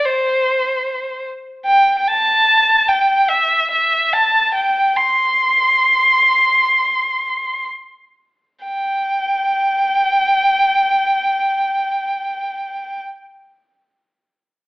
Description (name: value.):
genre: folk.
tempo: free time.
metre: none.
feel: none.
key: C major.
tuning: A4 = 440 Hz.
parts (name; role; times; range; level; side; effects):
warm violin; melody; 0.0-13.0 s; C5 to C6; -14 LUFS; equal; none.
room: moderate large studio reverb, RT60 1.2 s.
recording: band playing live in one room, AM radio sound.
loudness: -13 LUFS.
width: side -20 dB against mid.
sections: 0.0-8.6 A section; 8.6-12.6 B section.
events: slowing down 1.6-8.6.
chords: none.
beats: free time.